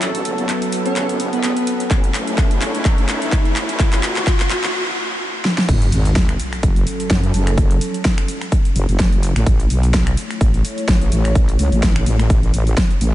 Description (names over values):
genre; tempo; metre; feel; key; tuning
bass house; 127 BPM; 4/4; swing 56% on 16ths; F# minor; A4 = 440 Hz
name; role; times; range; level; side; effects
sweeping resonant pad; sustained chords; 0.0-13.1 s; F#3 to C#5; -26 LUFS; equal; chorus, sidechain pumping
wobble bass; bass; 0.0-13.1 s; E1 to F#2; -19 LUFS; equal; chorus, sidechain pumping, high-pass filter
big-room dance drum kit; drums; 0.0-13.1 s; crash cymbal, finger snaps, handclaps, hi-hat, shaker, snare drum; -22 LUFS; equal; overdrive, studio ambience
riser and sub drop; sound effects; 0.1-7.6 s; none; -26 LUFS; equal; none
airy dreamy lead; melody; 0.9-1.7 s; B3 to C#4; -25 LUFS; equal; chorus, tape echo
electronic kick drum; drums; 1.9-12.9 s; none; -16 LUFS; equal; overdrive, studio ambience
room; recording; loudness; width
light reverb, digital ambience; nothing above 10.7 kHz; -15 LUFS; side -14 dB against mid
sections
0.0-5.7 A section; 5.7-13.1 B section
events
build-up 0.0-5.7; drum fill 0.0-4.7, 5.5; riser 0.1-4.7; break 4.7-5.7; drop 5.7-13.1; impact 5.7-7.6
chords
0.0 F#m; 1.9 A; 5.7 F#m; 9.5 A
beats
| 0.02 0.49 0.96 1.43 | 1.91 2.38 2.85 3.32 | 3.80 4.27 4.74 5.21 | 5.69 6.16 6.63 7.10 | 7.58 8.05 8.52 8.99 | 9.47 9.94 10.41 10.88 | 11.36 11.83 12.30 12.77